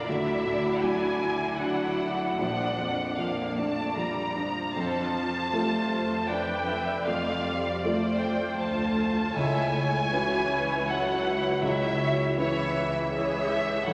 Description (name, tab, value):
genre	cinematic, emotional film score for orchestra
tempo	79 BPM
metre	3/4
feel	rubato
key	unclear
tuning	A4 = 441 Hz
part	warm studio violin section	melody	0.0-13.9 s	C#5 to Bb5	-33 LUFS	equal	none
part	rich studio violin section	second line	0.0-13.9 s	D4 to E5	-36 LUFS	equal	none
part	felt-muted upright piano	accompaniment	0.0-13.9 s	A1 to B4	-34 LUFS	equal	none
part	warm studio viola section	accompaniment	0.0-13.9 s	E3 to E5	-34 LUFS	equal	none
part	rich studio cello section	bass	0.0-13.9 s	C#2 to D3	-40 LUFS	equal	none
part	concert harp	arpeggios	4.8-13.9 s	A2 to F5	-38 LUFS	equal	none
part	rich studio double bass section	bass	4.8-13.9 s	F1 to D2	-44 LUFS	equal	none
room	wet concert hall reverb, RT60 2.1 s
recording	nothing above 10.5 kHz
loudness	-27 LUFS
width	mono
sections	0.0-4.8 A section; 4.8-13.9 B section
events	none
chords	0.1 Dadd9; 2.4 Bb; 4.8 F; 9.4 C#m7